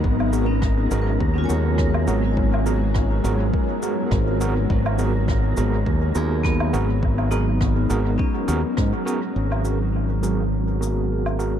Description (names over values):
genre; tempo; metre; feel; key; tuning
ambient dub; 103 BPM; 4/4; swing 55% on 16ths; G# dorian; A4 = 440 Hz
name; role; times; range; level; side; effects
granular cloud pad; sustained chords; 0.0-11.6 s; F#3 to A#5; -27 LUFS; equal; built-in reverb
vibraphone with medium hard mallets; arpeggios; 0.0-11.6 s; B3 to G#5; -29 LUFS; left 4 dB; tape echo
modern bright fingered electric bass; bass; 0.0-11.6 s; G#1 to G#2; -22 LUFS; equal; none
electronic kick drum; drums; 0.0-8.9 s; none; -24 LUFS; equal; overdrive
wind-like tuned noise texture; texture; 0.0-11.6 s; F#4 to A#4; -35 LUFS; equal; built-in reverb
woodblock, cabasa and rim click; drums; 0.2-11.5 s; none; -34 LUFS; equal; dub echo
overdriven tine electric piano; stabs; 0.3-11.5 s; B3 to A#4; -28 LUFS; right 5 dB; fast tremolo, low-pass filter, dub echo
room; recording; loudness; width
studio ambience; dark, warm production; -19 LUFS; side -9 dB against mid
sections
0.0-9.4 A section; 9.4-11.6 B section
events
none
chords
0.0 G#m9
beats
| 0.04 0.62 1.20 1.79 | 2.37 2.95 3.53 4.12 | 4.70 5.28 5.86 6.45 | 7.03 7.61 8.20 8.78 | 9.36 9.94 10.53 11.11